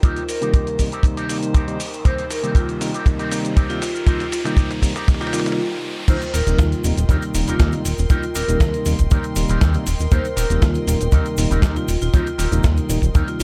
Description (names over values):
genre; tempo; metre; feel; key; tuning
nu-disco, nu disco; 119 BPM; 4/4; straight; unclear; A4 = 440 Hz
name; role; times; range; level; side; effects
vibraphone with medium hard mallets; melody; 0.0-13.4 s; F4 to C5; -30 LUFS; equal; tape echo
tine electric piano; accompaniment; 0.0-13.4 s; C3 to Eb4; -28 LUFS; equal; sidechain pumping, slapback echo
warm studio string section; sustained chords; 0.0-13.4 s; Eb3 to C6; -35 LUFS; equal; sidechain pumping
electric guitar with an envelope filter; riff; 0.0-13.4 s; C4 to Bb4; -34 LUFS; equal; subtle chorus, low-pass filter, slapback echo
dusty soul sampler-style drum kit; drums; 0.0-13.4 s; crash cymbal, hi-hat, shaker, snare drum, toms; -32 LUFS; equal; high-pass filter on hats, high-pass filter on toms, high-pass filter on perc, high-pass filter on cymbals, high-pass filter on snare
kick drum; drums; 0.0-13.3 s; none; -20 LUFS; equal; none
riser; sound effects; 0.5-6.1 s; none; -36 LUFS; equal; none
chorused synth bass; bass; 6.1-13.4 s; Eb1 to Eb2; -22 LUFS; equal; none
egg shaker; percussion; 6.1-13.4 s; none; -39 LUFS; equal; none
room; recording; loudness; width
light reverb, studio ambience; dark, warm production; -19 LUFS; mono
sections
0.0-6.1 A section; 6.1-13.4 B section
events
build-up 0.0-6.1; drum fill 0.0-5.6; riser 0.5-6.1; break 5.6-6.1; drop 6.1-13.4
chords
0.0 Eb6